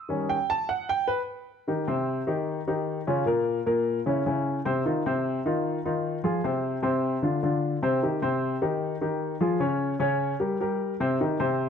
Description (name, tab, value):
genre	jazz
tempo	151 BPM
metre	4/4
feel	straight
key	unclear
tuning	A4 = 440 Hz
part	warm baby grand piano	solo	0.1-11.7 s	Bb2 to A5	-24 LUFS	left 1 dB	none
room	light reverb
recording	close, detailed microphones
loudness	-24 LUFS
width	side -7 dB against mid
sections	0.0-1.7 A section; 1.7-11.7 B section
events	grand piano solo 0.0-1.7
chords	0.1 Eb7#9; 1.7 Cm; 3.3 N.C.; 4.1 Dbmmaj7; 4.8 F7(no3); 6.4 N.C.; 7.2 Csus24; 8.0 Cm; 9.6 N.C.; 10.4 Gmadd11